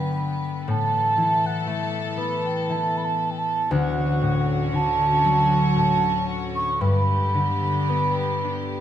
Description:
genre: celtic folk, Celtic slow air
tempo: 53-60 BPM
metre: 3/4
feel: rubato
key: A mixolydian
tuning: A4 = 439 Hz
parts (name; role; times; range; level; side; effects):
- mellow baroque flute; melody; 0.0-8.8 s; E5 to C#6; -24 LUFS; right 3 dB; none
- concert harp; accompaniment; 0.0-8.8 s; D2 to D4; -23 LUFS; left 2 dB; none
- warm studio string section; sustained chords; 0.0-8.8 s; D3 to B4; -29 LUFS; equal; none
room: moderate recital hall reverb, RT60 1.6 s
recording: minimal, uncompressed stereo recording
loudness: -20 LUFS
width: side -10 dB against mid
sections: 0.0-8.8 A section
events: none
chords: 0.0 G; 0.7 Asus2; 3.7 Dmaj7; 6.8 G

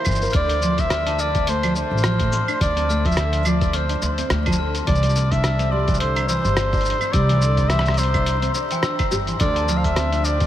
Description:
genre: folktronica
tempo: 106 BPM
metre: 4/4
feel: swing 56% on 16ths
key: unclear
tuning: A4 = 441 Hz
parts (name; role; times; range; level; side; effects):
- warm flugelhorn; melody; 0.0-10.5 s; C5 to F5; -24 LUFS; equal; vintage 12-bit sampler grit, ping-pong delay
- hand-pumped harmonium; sustained chords; 0.0-0.3, 9.4-10.5 s; F3 to C5; -36 LUFS; equal; none
- lo-fi sampler-style drum kit; drums; 0.0-10.5 s; cabasa, claves, hi-hat, rim click; -27 LUFS; equal; none
- nylon-string guitar; arpeggios; 0.1-10.5 s; D3 to Bb4; -26 LUFS; equal; ensemble chorus
- upright bass; bass; 0.1-10.5 s; G1 to D2; -22 LUFS; equal; none
- electronic kick drum; drums; 0.1-10.5 s; none; -24 LUFS; equal; none
- glockenspiel with soft plastic mallets; second line; 0.3-9.8 s; G5 to F6; -28 LUFS; left 3 dB; ping-pong delay
room: moderate huge ambient reverb, RT60 8.2 s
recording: dreamy mix soaked in reverb, vinyl crackle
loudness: -18 LUFS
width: side -12 dB against mid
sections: 0.3-10.5 A section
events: none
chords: 0.3 Dm7; 4.9 Cadd9; 9.4 Dm7

